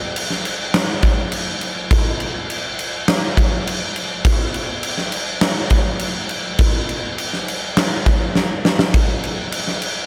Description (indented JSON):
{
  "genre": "rock",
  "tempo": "102 BPM",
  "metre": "4/4",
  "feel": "straight",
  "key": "none",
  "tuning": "none",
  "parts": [
    { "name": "huge arena drum kit", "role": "drums", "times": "0.2-10.0 s", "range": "crash cymbal, kick drum, snare drum", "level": "-20 LUFS", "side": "equal", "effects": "none" }
  ],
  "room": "little or no reverb",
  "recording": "none",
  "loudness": "-19 LUFS",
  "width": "mono",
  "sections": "0.0-10.1 A section",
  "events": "drum fill 8.4-8.9",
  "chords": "none",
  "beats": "0.15 0.74 1.32 | 1.91 2.49 3.08 3.66 | 4.25 4.84 5.42 6.01 | 6.60 7.18 7.77 8.36 | 8.94 9.53"
}